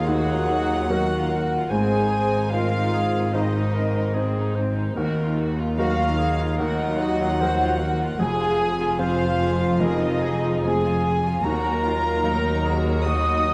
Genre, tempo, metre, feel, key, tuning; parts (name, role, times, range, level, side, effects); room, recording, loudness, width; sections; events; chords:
cinematic, emotional film score for orchestra; 74 BPM; 4/4; rubato; Eb dorian; A4 = 441 Hz
dark studio violin section; melody; 0.0-13.5 s; C4 to Ab4; -36 LUFS; equal
clear clarinet; second line; 0.0-13.5 s; Gb4 to Eb5; -32 LUFS; equal
mellow hollow concert flute; second line; 0.0-13.5 s; Eb5 to Eb6; -30 LUFS; equal
warm studio violin section; second line; 0.0-13.5 s; Eb5 to Eb6; -34 LUFS; equal
dark studio viola section; accompaniment; 0.0-13.5 s; Gb3 to F5; -32 LUFS; equal
felt-muted upright piano; accompaniment; 0.0-13.5 s; F1 to F5; -33 LUFS; equal
mellow French horn section; sustained chords; 0.0-13.5 s; Eb3 to F4; -32 LUFS; equal
dark studio double bass section; bass; 0.0-13.5 s; F1 to Eb2; -30 LUFS; equal
warm studio cello section; bass; 0.0-13.5 s; Eb2 to Ab2; -30 LUFS; equal
timpani; percussion; 11.4-12.6 s; Eb3; -39 LUFS; equal
wet scoring stage reverb, RT60 1.9 s; dark, warm production; -22 LUFS; mono
0.0-13.5 A section
0.0 Ebmadd9; 1.7 Ab; 5.0 Ebmadd9; 8.2 Fm; 11.4 Ebmadd9